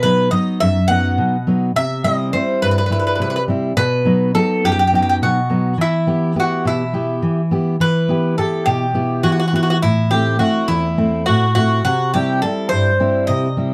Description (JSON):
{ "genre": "greek folk", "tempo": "208 BPM (eighths)", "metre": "7/8", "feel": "straight", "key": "E harmonic minor", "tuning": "A4 = 441 Hz", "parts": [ { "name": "Greek bouzouki", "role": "melody", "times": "0.0-13.7 s", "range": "E4 to F#5", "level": "-21 LUFS", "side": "equal", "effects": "none" }, { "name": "fingerpicked steel-string acoustic guitar", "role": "accompaniment", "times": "0.0-13.7 s", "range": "E2 to G4", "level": "-19 LUFS", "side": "equal", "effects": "none" } ], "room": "light reverb", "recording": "dark, warm production", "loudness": "-17 LUFS", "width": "mono", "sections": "0.0-7.8 A section; 7.8-13.7 A section", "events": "none", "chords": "0.0 B; 1.8 C; 3.8 B; 5.8 Em; 9.8 Am; 11.9 C" }